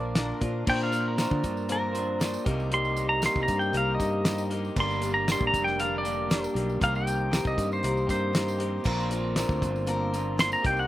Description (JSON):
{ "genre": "folk rock and heartland rock", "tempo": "117 BPM", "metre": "4/4", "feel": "straight", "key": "unclear", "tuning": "A4 = 440 Hz", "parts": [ { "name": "pedal steel guitar", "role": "melody", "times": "0.0-10.9 s", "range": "Bb4 to C6", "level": "-28 LUFS", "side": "equal", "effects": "none" }, { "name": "picked acoustic archtop guitar", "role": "accompaniment", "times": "0.0-10.9 s", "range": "G2 to Bb4", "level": "-34 LUFS", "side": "left 3 dB", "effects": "none" }, { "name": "pedal harmonium", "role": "sustained chords", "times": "0.0-10.9 s", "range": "D4 to Bb5", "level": "-41 LUFS", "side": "right 1 dB", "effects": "none" }, { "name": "electric guitar through a small old amp", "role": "riff", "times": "0.0-10.9 s", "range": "G2 to C5", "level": "-32 LUFS", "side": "equal", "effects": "slapback echo" }, { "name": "fingered electric bass", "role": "bass", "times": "0.0-10.9 s", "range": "F1 to D3", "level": "-31 LUFS", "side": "equal", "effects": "none" }, { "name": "damped 70s drum kit", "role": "drums", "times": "0.2-10.8 s", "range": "crash cymbal, hi-hat, kick drum, snare drum", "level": "-29 LUFS", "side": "equal", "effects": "none" }, { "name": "tambourine", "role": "percussion", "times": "0.7-10.8 s", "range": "none", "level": "-45 LUFS", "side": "right 5 dB", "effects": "none" } ], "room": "little or no reverb", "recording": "recorded outdoors, with no room sound", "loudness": "-24 LUFS", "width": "side -14 dB against mid", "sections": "0.7-10.9 A section", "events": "pedal steel guitar solo 0.7-10.9", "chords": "0.0 Bb; 0.7 Bbadd9; 2.5 Cm7; 4.8 Gm; 6.8 Cm7; 8.9 Bbadd9" }